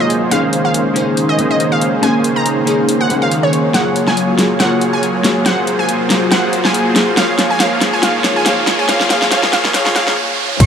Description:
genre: future bass.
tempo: 140 BPM.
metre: 4/4.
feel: swing 55% on 16ths, half-time.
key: Bb minor.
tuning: A4 = 441 Hz.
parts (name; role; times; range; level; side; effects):
wide unison pluck; melody; 0.0-10.2 s; Db5 to Bb5; -18 LUFS; right 1 dB; cassette tape, sidechain pumping, dub echo.
glassy digital keys; accompaniment; 0.0-10.6 s; Gb3 to Db5; -20 LUFS; left 2 dB; chorus, sidechain pumping, tape echo.
airy breathy pad; sustained chords; 0.0-10.1 s; C3 to F5; -25 LUFS; right 1 dB; chorus, sidechain pumping.
soft supersaw; riff; 0.0-10.7 s; Eb3 to Db5; -17 LUFS; right 1 dB; sidechain pumping, low-pass filter.
warm 808-style bass; bass; 0.0-10.7 s; Gb1 to Bb1; -31 LUFS; equal; none.
riser and impact; sound effects; 2.3-10.7 s; none; -24 LUFS; equal; none.
dubstep drum kit; drums; 0.1-10.7 s; crash cymbal, hi-hat, snare drum; -17 LUFS; equal; none.
airy dreamy lead; arpeggios; 10.6-10.7 s; Db6; -17 LUFS; right 2 dB; chorus, sidechain pumping.
electronic kick drum; drums; 10.6-10.7 s; none; -6 LUFS; equal; none.
room: moderate huge ambient reverb, RT60 7.9 s.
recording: dark, warm production, high-pass filter.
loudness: -12 LUFS.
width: side -8 dB against mid.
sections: 0.0-10.6 A section.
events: build-up 0.0-10.6; filter sweep on supersaw synth 0.0-10.6; filter sweep 0.0-10.6; riser 2.3-10.6; drum fill 3.7-10.2; stop 10.2-10.6.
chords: 0.3 Bbm11; 3.7 Gbmaj9; 5.5 Ab13; 7.2 Bbm7.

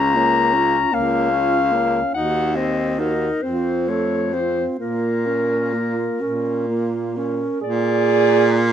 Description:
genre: classical, lyrical piece for single-reed quartet.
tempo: 42-53 BPM (dotted quarters).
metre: 6/8.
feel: rubato.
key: Bb minor.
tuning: A4 = 439 Hz.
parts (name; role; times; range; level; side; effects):
mellow clarinet; melody; 0.0-8.7 s; Bb4 to Bb5; -21 LUFS; left 6 dB; none.
mellow alto saxophone; second line; 0.0-8.7 s; Db4 to Bb4; -24 LUFS; right 9 dB; none.
warm tenor saxophone; accompaniment; 0.0-7.6 s; A3 to Eb4; -25 LUFS; left 1 dB; none.
warm baritone saxophone; bass; 0.0-8.7 s; Db2 to Bb2; -23 LUFS; right 2 dB; none.
room: moderate stone room reverb, RT60 1.2 s.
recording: close, detailed microphones.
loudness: -17 LUFS.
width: side -9 dB against mid.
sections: 0.0-7.6 A section; 7.6-8.7 B section.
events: none.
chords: 0.0 Bbm/Db; 2.1 Cdim/Eb; 3.4 F; 4.8 Bbm; 7.6 Bb7.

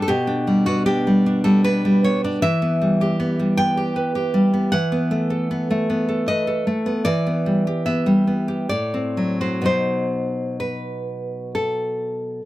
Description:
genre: romantic piece for solo classical guitar.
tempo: 61-80 BPM.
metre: 3/4.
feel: rubato.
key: unclear.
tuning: A4 = 440 Hz.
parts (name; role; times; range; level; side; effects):
nylon-string guitar; solo; 0.0-12.4 s; A2 to G5; -18 LUFS; equal; none.
room: light reverb.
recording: none.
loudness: -18 LUFS.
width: side -16 dB against mid.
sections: 0.0-12.5 A section.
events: none.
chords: 0.1 G/B; 2.4 Em; 4.7 B5/E; 7.1 Em; 8.7 F#dim/A; 9.7 B.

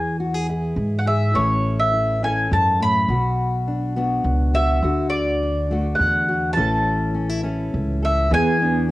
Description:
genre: acoustic folk duo or small band.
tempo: 103 BPM.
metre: 3/4.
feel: straight.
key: A major.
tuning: A4 = 440 Hz.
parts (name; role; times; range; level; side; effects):
mandolin; melody; 0.0-8.9 s; C#5 to B5; -21 LUFS; equal; cassette tape.
fingerpicked steel-string acoustic guitar; accompaniment; 0.0-8.9 s; G#2 to A4; -24 LUFS; left 2 dB; cassette tape.
upright bass; bass; 0.0-8.9 s; A1 to G#2; -23 LUFS; equal; none.
mellow electric guitar; arpeggios; 8.3-8.9 s; B3 to G#4; -21 LUFS; right 4 dB; tremolo, cassette tape.
room: moderate studio reverb, RT60 0.6 s.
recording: home recording on cassette.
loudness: -18 LUFS.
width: side -17 dB against mid.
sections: 0.0-8.3 A section.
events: none.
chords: 0.0 E; 1.3 A; 3.1 Bm; 4.8 D; 6.6 A; 8.3 E7.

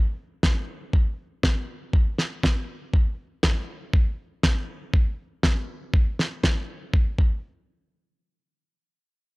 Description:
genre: nu-disco, nu disco.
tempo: 120 BPM.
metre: 4/4.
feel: swing 56% on 16ths.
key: none.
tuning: none.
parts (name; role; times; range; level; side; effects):
electronic kick drum; drums; 0.4-7.3 s; none; -21 LUFS; equal; overdrive, studio reverb.
snare drum; drums; 0.4-6.5 s; none; -25 LUFS; equal; studio reverb.
room: little or no reverb.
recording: dry, gritty hardware recording, transformer saturation.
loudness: -22 LUFS.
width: side -26 dB against mid.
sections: 0.0-6.9 A section; 6.9-9.4 B section.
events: none.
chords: none.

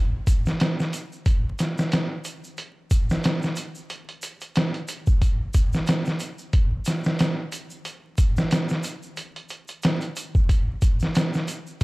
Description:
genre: trip hop.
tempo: 91 BPM.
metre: 4/4.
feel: swing 57% on 16ths.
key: none.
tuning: none.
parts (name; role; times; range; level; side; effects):
trip hop sampler-style drum kit; drums; 0.3-11.8 s; hi-hat, kick drum, snare drum; -21 LUFS; equal; none.
egg shaker; percussion; 0.3-11.8 s; none; -41 LUFS; right 1 dB; none.
room: little or no reverb.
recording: dark, warm production, vinyl crackle.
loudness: -21 LUFS.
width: side -22 dB against mid.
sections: 0.0-11.8 A section.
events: none.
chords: none.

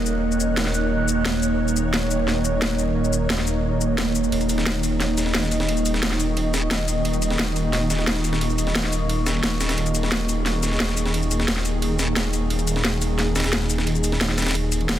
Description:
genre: dark technical drum and bass.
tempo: 176 BPM.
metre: 4/4.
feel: straight.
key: Eb minor.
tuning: A4 = 440 Hz.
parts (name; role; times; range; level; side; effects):
swarming drone; sustained chords; 0.0-15.0 s; Eb3 to Eb5; -26 LUFS; equal; built-in reverb.
phased detuned saw bass; bass; 0.0-15.0 s; Eb1; -24 LUFS; equal; phaser, tube saturation.
warbly tape-like pad; texture; 0.0-15.0 s; Bb3 to Gb6; -28 LUFS; right 2 dB; chorus, built-in reverb.
electronic shaker and snare drum; drums; 0.1-15.0 s; none; -26 LUFS; equal; overdrive.
breakbeat sampler-style drum kit; drums; 4.3-15.0 s; ride cymbal, snare drum; -28 LUFS; right 1 dB; high-pass filter on cymbals, high-pass filter on snare.
room: moderate lush hall reverb, RT60 2.1 s.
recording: dense, heavily limited modern master.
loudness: -20 LUFS.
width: side -12 dB against mid.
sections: 0.0-15.0 A section.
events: none.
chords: 0.0 Eb5.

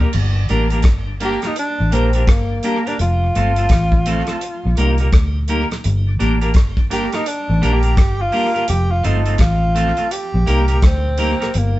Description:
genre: roots reggae.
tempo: 84 BPM.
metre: 4/4.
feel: swing 62% on 16ths.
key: G minor.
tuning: A4 = 440 Hz.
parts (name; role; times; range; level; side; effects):
clean electric guitar; accompaniment; 0.0-11.5 s; A3 to Bb4; -22 LUFS; right 1 dB; none.
tonewheel organ; accompaniment; 0.0-11.8 s; Eb2 to Eb4; -31 LUFS; left 2 dB; overdrive, stopped rotary speaker, tape echo.
vintage muted fingered electric bass; bass; 0.1-11.8 s; F1 to D2; -17 LUFS; equal; none.
damped 70s drum kit; drums; 0.1-11.7 s; crash cymbal, hi-hat, kick drum, rim click; -17 LUFS; equal; none.
breathy tenor saxophone; melody; 1.2-11.8 s; Bb3 to G4; -22 LUFS; equal; none.
room: light reverb.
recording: band playing live in one room, nothing above 7.9 kHz.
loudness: -14 LUFS.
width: side -16 dB against mid.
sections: 0.1-11.5 A section.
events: none.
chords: 0.1 Gm; 3.0 F; 4.4 Eb; 5.8 Gm; 8.7 F; 10.1 Eb.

